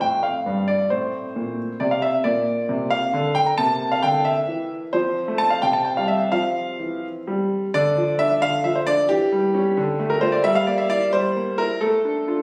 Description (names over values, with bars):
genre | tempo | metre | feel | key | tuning
classical-period piano sonatina | 89 BPM (dotted quarters) | 6/8 | straight | F major, D minor from 7.7 s | A4 = 440 Hz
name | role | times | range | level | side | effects
clear concert grand piano | solo | 0.0-12.4 s | C2 to Bb5 | -21 LUFS | equal | none
room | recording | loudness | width
moderate recital hall reverb, RT60 1.6 s | recorded on a phone in the room, studio reverb | -21 LUFS | mono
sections
0.0-7.7 A section; 7.7-12.4 B section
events
none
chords
0.0 F; 0.9 Am; 2.2 Bbadd9; 3.6 C7; 4.9 F; 5.6 N.C.; 6.3 F5; 7.7 Dm; 9.1 C#dim/E; 9.8 Dm; 10.4 Edim/G; 11.8 Dm/A